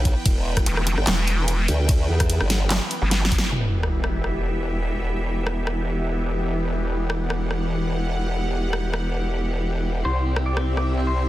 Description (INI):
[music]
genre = heavy wobble dubstep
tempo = 147 BPM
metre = 4/4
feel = swing 53% on 16ths, half-time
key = E minor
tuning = A4 = 438 Hz
[part]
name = supersaw pad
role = sustained chords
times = 0.0-11.3 s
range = C3 to G5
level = -28 LUFS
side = equal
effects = phaser, sidechain pumping
[part]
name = formant-sweep wobble bass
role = bass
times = 0.0-11.3 s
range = E1 to E2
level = -24 LUFS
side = equal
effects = chorus, overdrive
[part]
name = dubstep drum kit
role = drums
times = 0.1-10.8 s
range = handclaps, hi-hat, ride cymbal, rim click, snare drum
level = -26 LUFS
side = equal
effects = soft clipping on snare
[part]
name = electronic kick drum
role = drums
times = 0.1-3.4 s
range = none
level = -21 LUFS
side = equal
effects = none
[part]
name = vowel-sweep wobble bass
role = bass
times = 0.7-3.5 s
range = E1 to G1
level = -21 LUFS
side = equal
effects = chorus, overdrive
[part]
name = sub drop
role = sound effects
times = 3.5-5.2 s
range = none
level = -26 LUFS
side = equal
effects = none
[part]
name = clean electric guitar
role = melody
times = 10.1-11.3 s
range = C4 to D5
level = -27 LUFS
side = left 2 dB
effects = spring reverb, tape echo
[sound]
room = light reverb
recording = dense, heavily limited modern master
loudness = -20 LUFS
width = side -15 dB against mid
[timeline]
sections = 0.0-3.5 A section; 3.5-11.3 B section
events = drop 0.0-3.5; drum fill 3.1-3.5; band accent 3.4; impact 3.5-5.2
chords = 0.0 E5; 3.5 Em; 10.1 C